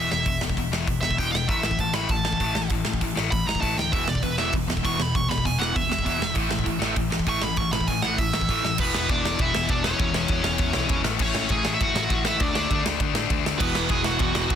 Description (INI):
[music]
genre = punk rock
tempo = 198 BPM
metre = 4/4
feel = straight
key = unclear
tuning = A4 = 440 Hz
[part]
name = smooth overdriven lead guitar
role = melody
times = 0.0-14.6 s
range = B3 to C#6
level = -27 LUFS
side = right 3 dB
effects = ping-pong delay
[part]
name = overdriven electric guitar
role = riff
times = 0.0-14.6 s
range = E2 to D4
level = -27 LUFS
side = left 8 dB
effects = none
[part]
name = modern bright picked electric bass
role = bass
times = 0.0-14.6 s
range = E1 to D3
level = -31 LUFS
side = right 1 dB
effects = none
[part]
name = big rock drum kit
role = drums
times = 0.1-14.6 s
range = crash cymbal, hi-hat, kick drum, ride cymbal, snare drum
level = -26 LUFS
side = right 1 dB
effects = none
[part]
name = distorted electric guitar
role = riff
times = 3.9-8.8, 13.6-14.6 s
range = E2 to A3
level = -30 LUFS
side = right 16 dB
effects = distortion
[sound]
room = little or no reverb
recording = dense, heavily limited modern master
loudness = -21 LUFS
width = side -9 dB against mid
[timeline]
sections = 0.0-8.8 A section; 8.8-14.6 B section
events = lead electric guitar solo 0.0-8.8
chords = 0.0 E5; 1.5 A5; 3.9 E5; 6.4 A5; 8.8 E5; 11.0 A; 12.4 D5; 13.6 E